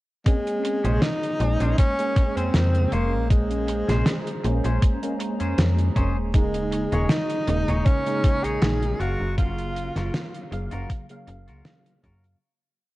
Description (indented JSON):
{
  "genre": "vaporwave",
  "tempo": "79 BPM",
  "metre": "4/4",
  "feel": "swing 53% on 16ths",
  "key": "Bb minor",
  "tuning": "A4 = 440 Hz",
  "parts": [
    { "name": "breathy tenor saxophone", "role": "melody", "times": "0.3-10.5 s", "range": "Ab3 to Ab4", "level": "-27 LUFS", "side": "equal", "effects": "tape echo" },
    { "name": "mellow tine electric piano", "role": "accompaniment", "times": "0.3-12.4 s", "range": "C3 to F5", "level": "-29 LUFS", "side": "equal", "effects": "ensemble chorus" },
    { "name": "warbly tape-like pad", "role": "sustained chords", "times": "1.2-12.4 s", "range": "Gb3 to Bb5", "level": "-39 LUFS", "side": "right 3 dB", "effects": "chorus, built-in reverb, phaser, vintage 12-bit sampler grit" },
    { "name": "damped 70s drum kit", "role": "drums", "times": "0.3-12.4 s", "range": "hi-hat, snare drum", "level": "-27 LUFS", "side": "equal", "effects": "studio ambience, gated reverb" },
    { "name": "electronic kick drum", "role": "drums", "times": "0.3-12.2 s", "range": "none", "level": "-19 LUFS", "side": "equal", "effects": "studio ambience" },
    { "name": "clean electric guitar", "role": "riff", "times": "0.6-12.2 s", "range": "Db4 to Db5", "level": "-36 LUFS", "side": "left 2 dB", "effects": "lush chorus, analog delay" },
    { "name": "slap-like FM bass", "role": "bass", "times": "0.8-12.4 s", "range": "Eb1 to Gb2", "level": "-24 LUFS", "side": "equal", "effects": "none" }
  ],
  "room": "small room ambience",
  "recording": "cassette tape",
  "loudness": "-21 LUFS",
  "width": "side -18 dB against mid",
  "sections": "0.3-12.4 groove",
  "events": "fade-out 8.4-12.4",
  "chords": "0.3 Bbm9; 6.3 Eb7sus4; 9.0 Gbmaj7",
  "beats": "| 0.27 1.03 1.78 2.54 | 3.30 4.06 4.82 5.58 | 6.34 7.10 7.86 8.62 | 9.38 10.14 10.90 11.66"
}